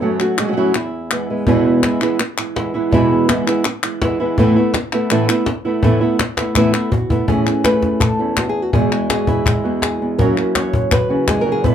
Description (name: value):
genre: flamenco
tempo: 165 BPM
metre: 4/4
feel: straight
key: E major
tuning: A4 = 442 Hz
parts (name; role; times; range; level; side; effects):
- flamenco guitar; melody; 0.0-11.7 s; E2 to C#5; -17 LUFS; equal; plate reverb
- flamenco guitar; stabs; 0.0-11.7 s; E2 to F#4; -21 LUFS; right 4 dB; none
- palmas hand claps; percussion; 0.2-11.5 s; none; -22 LUFS; left 4 dB; none
- cajon; percussion; 1.5-11.7 s; none; -19 LUFS; left 2 dB; none
room: moderate small room reverb, RT60 0.5 s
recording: none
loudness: -14 LUFS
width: side -9 dB against mid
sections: 0.0-1.5 A section; 1.5-7.3 B section; 7.3-11.7 C section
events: drum fill 6.4-7.3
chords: 0.0 F#m; 0.7 E; 4.4 Asus2; 7.3 Aadd9; 8.7 Eadd9; 10.2 F#7